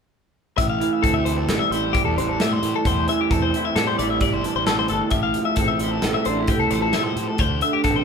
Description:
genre	math rock and midwest emo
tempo	132 BPM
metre	5/4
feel	straight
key	unclear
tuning	A4 = 439 Hz
part	electric guitar through a small old amp	accompaniment	0.6-8.0 s	D2 to E4	-23 LUFS	right 4 dB	none
part	twelve-string electric guitar	arpeggios	0.6-8.0 s	G4 to F5	-23 LUFS	left 7 dB	none
part	fuzz fingered electric bass	bass	0.6-8.0 s	G1 to A2	-28 LUFS	equal	overdrive
part	modern studio drum kit	drums	0.6-8.0 s	hi-hat, kick drum, snare drum	-25 LUFS	equal	none
room	wet large studio reverb, RT60 1.4 s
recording	band playing live in one room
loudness	-18 LUFS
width	side -6 dB against mid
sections	0.6-8.0 A section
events	none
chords	0.6 Am7; 5.1 Fmaj7/A

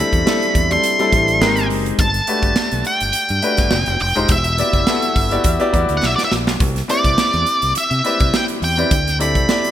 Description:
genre	polished 1980s jazz-funk pop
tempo	104 BPM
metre	4/4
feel	swing 54% on 16ths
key	E minor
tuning	A4 = 440 Hz
part	octave-fuzz lead guitar	melody	0.0-9.7 s	D5 to C6	-18 LUFS	equal	distortion
part	warm grand piano	accompaniment	0.0-9.7 s	G3 to D5	-20 LUFS	left 2 dB	wide subtle chorus
part	fingered electric bass	bass	0.1-9.4 s	Eb1 to C3	-22 LUFS	equal	none
part	modern studio drum kit	drums	0.1-9.7 s	hi-hat, kick drum, snare drum	-20 LUFS	right 1 dB	gated reverb
room	light reverb, small room ambience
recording	bright 1980s-style digital production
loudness	-14 LUFS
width	side -11 dB against mid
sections	0.0-9.7 A section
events	drum fill 6.0-6.6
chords	0.0 D9sus4; 1.4 G#maj9; 2.0 Gmaj9; 3.7 Fm9; 4.3 Em9; 6.6 Cmaj9; 8.9 D9sus4

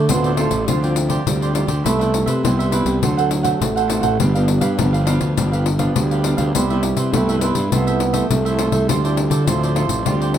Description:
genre	samba and choro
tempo	102 BPM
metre	4/4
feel	straight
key	unclear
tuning	A4 = 439 Hz
part	breathy trombone	second line	0.0-10.4 s	F3 to B3	-23 LUFS	right 4 dB	none
part	cavaquinho	accompaniment	0.0-10.4 s	D4 to F#5	-25 LUFS	right 6 dB	none
part	nylon-string guitar	accompaniment	0.0-10.4 s	G2 to F#4	-25 LUFS	left 1 dB	none
part	fuzz fingered electric bass	bass	0.0-10.4 s	G1 to D3	-19 LUFS	equal	overdrive
part	pandeiro	percussion	0.1-10.4 s	none	-23 LUFS	left 5 dB	none
room	wet studio ambience, RT60 0.5 s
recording	band playing live in one room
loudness	-16 LUFS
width	side -10 dB against mid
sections	0.0-10.4 A section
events	none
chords	0.0 Dm7; 0.7 G7sus4/D; 1.9 Cmaj7; 3.0 D7; 4.2 G7; 6.5 Cmaj7; 7.7 Fmaj7/C; 8.9 Dm9

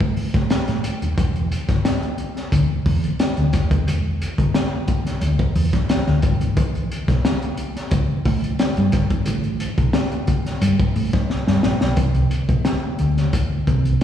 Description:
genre	funk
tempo	89 BPM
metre	4/4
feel	straight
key	unclear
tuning	A4 = 442 Hz
part	hollow-body short-scale fingered electric bass	bass	0.0-13.9 s	D#1 to A2	-19 LUFS	equal	none
part	crunchy breakbeat drum kit	drums	0.0-14.0 s	hi-hat, kick drum, snare drum	-20 LUFS	left 1 dB	none
room	little or no reverb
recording	live gig heard through the venue's PA, recital hall reverb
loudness	-18 LUFS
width	side -10 dB against mid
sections	0.0-12.0 A section; 12.0-14.0 B section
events	drum fill 11.3-12.0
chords	none

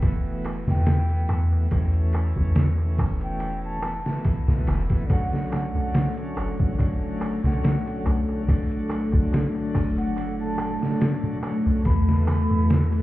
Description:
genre	trip hop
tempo	71 BPM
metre	4/4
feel	swing 54% on 16ths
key	B minor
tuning	A4 = 440 Hz
part	bright tonewheel organ	accompaniment	0.0-13.0 s	B2 to D4	-30 LUFS	equal	overdrive, slow rotary speaker, tremolo
part	soft 808-style bass	bass	0.0-13.0 s	E1 to E2	-24 LUFS	equal	none
part	trip hop sampler-style drum kit	drums	0.0-13.0 s	hi-hat, kick drum, ride cymbal, snare drum	-24 LUFS	equal	none
part	darbuka	percussion	0.0-13.0 s	none	-33 LUFS	right 2 dB	none
part	mellow silver concert flute	melody	0.7-12.9 s	F#5 to B5	-36 LUFS	right 1 dB	tape echo
part	string machine, cellos	sustained chords	5.1-13.0 s	A3 to A4	-28 LUFS	left 1 dB	ensemble chorus
room	light reverb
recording	heard muffled through a wall, club reverb, EQ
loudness	-21 LUFS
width	side -16 dB against mid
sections	0.0-13.0 A section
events	none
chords	0.0 Esus4; 5.1 Bm7; 11.9 Esus4

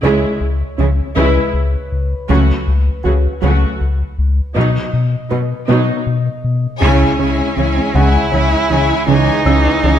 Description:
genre	cinematic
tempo	53 BPM (dotted quarters)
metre	6/8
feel	straight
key	C# minor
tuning	A4 = 439 Hz
part	rich symphonic viola section	accompaniment	0.0-10.0 s	E3 to F#4	-20 LUFS	right 1 dB	none
part	soft round pluck	arpeggios	0.0-10.0 s	C#3 to B4	-23 LUFS	right 4 dB	chorus, ping-pong delay
part	smooth gliding synth bass	riff	0.0-10.0 s	C#2 to B2	-16 LUFS	left 2 dB	none
part	rich symphonic cello section	bass	0.0-9.9 s	B2 to C#3	-19 LUFS	right 4 dB	none
part	felt-muted upright piano	texture	0.0-10.0 s	B4 to E6	-26 LUFS	left 5 dB	ping-pong delay
part	rich cello	melody	6.8-10.0 s	C#4 to E4	-18 LUFS	right 3 dB	ping-pong delay
part	warm symphonic violin section	second line	6.8-10.0 s	C#5 to G#5	-20 LUFS	left 6 dB	none
room	moderate scoring stage reverb, RT60 1.4 s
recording	none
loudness	-13 LUFS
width	side -10 dB against mid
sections	0.0-6.8 A section; 6.8-10.0 B section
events	build-up 0.0-6.8; band accent 6.8-7.6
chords	0.0 C#m; 2.3 F#m/C#; 4.6 B; 6.8 C#m

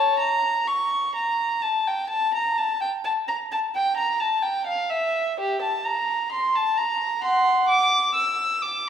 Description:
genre	classical, baroque-style suite movement for unaccompanied violin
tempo	64 BPM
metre	4/4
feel	rubato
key	unclear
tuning	A4 = 440 Hz
part	dark violin	solo	0.0-8.9 s	G4 to E6	-21 LUFS	equal	none
room	wet recital hall reverb, RT60 1.7 s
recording	heard from further back in the room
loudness	-21 LUFS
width	side -8 dB against mid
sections	0.0-8.9 A section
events	none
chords	none

